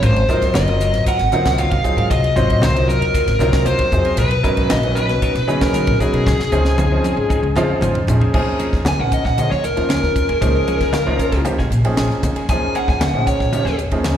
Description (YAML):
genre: electric jazz fusion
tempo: 116 BPM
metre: 4/4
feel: straight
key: Ab mixolydian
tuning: A4 = 441 Hz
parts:
  - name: dark smooth lead guitar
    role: melody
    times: 0.0-13.8 s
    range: Ab4 to Ab5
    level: -20 LUFS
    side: left 1 dB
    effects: overdrive, slapback echo
  - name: clear grand piano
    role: accompaniment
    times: 0.0-14.2 s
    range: F3 to Ab5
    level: -21 LUFS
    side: right 2 dB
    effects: slapback echo
  - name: clean electric guitar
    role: stabs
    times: 0.0-14.2 s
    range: F3 to Bb4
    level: -29 LUFS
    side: left 1 dB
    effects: lush chorus, slapback echo
  - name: upright bass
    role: bass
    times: 0.0-14.1 s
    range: Gb1 to Eb3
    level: -20 LUFS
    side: equal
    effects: none
  - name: tight funk drum kit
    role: drums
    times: 0.0-14.2 s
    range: crash cymbal, hi-hat, kick drum, ride cymbal, snare drum, toms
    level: -22 LUFS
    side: equal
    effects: none
  - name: congas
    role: percussion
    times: 0.0-14.2 s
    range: none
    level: -25 LUFS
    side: left 1 dB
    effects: slapback echo
room: light reverb, studio ambience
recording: live gig heard through the venue's PA, recital hall reverb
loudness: -14 LUFS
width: side -10 dB against mid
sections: 0.0-8.3 A section; 8.3-14.2 B section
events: drum fill 6.3-8.3; grand piano fill 7.3-8.3, 10.9-12.5; lead electric guitar solo 8.3-14.2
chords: 0.0 Ab13; 4.2 Bmaj7; 6.3 Dbmaj9; 8.3 Eb9sus4